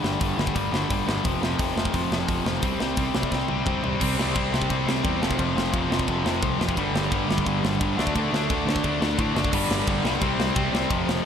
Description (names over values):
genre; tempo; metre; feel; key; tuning
punk rock; 174 BPM; 4/4; straight; unclear; A4 = 441 Hz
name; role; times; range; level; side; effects
distorted electric guitar; riff; 0.0-11.2 s; F2 to D4; -27 LUFS; left 11 dB; overdrive
sludgy distorted guitar; riff; 0.0-11.2 s; F2 to D4; -28 LUFS; right 9 dB; overdrive
picked electric bass; bass; 0.0-11.2 s; F1 to A2; -30 LUFS; equal; none
tight metal drum kit; drums; 0.0-11.2 s; crash cymbal, hi-hat, kick drum, ride cymbal, snare drum, toms; -27 LUFS; equal; none
high-gain distorted guitar; riff; 4.0-11.2 s; F2 to D4; -29 LUFS; equal; distortion
room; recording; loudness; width
light reverb; lossy compression artefacts; -22 LUFS; side -8 dB against mid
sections
0.0-4.0 A section; 4.0-9.5 B section; 9.5-11.3 C section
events
drum fill 3.3-4.0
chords
0.0 G5; 1.2 F5; 2.6 C5; 5.2 F5; 6.8 G5; 8.0 D5; 9.5 G5; 10.2 C5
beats
0.21 0.56 0.90 | 1.25 1.59 1.94 2.28 | 2.63 2.97 3.32 3.66 | 4.01 4.35 4.70 5.04 | 5.39 5.73 6.08 6.42 | 6.77 7.12 7.46 7.80 | 8.15 8.49 8.84 9.18 | 9.53 9.87 10.22 10.56 | 10.91